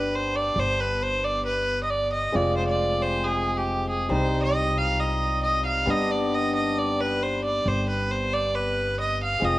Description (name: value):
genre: klezmer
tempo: 136 BPM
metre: 4/4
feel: straight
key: G phrygian dominant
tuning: A4 = 441 Hz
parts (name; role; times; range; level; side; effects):
- bright violin; melody; 0.0-9.6 s; G4 to F5; -24 LUFS; right 1 dB; cassette tape
- hammered dulcimer; accompaniment; 0.0-9.6 s; G3 to G4; -28 LUFS; left 2 dB; cassette tape
- upright bass; bass; 0.0-9.6 s; F1 to C2; -30 LUFS; equal; none
room: wet spring reverb, RT60 1.1 s, small room ambience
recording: home recording on cassette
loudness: -22 LUFS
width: side -17 dB against mid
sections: 0.0-9.6 A section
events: none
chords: 0.0 G; 2.3 Fm; 4.1 Cm; 5.9 G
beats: 0.12 | 0.56 1.01 1.45 1.89 | 2.33 2.77 3.22 3.66 | 4.10 4.55 4.99 5.43 | 5.88 6.32 6.76 7.20 | 7.65 8.09 8.53 8.97 | 9.42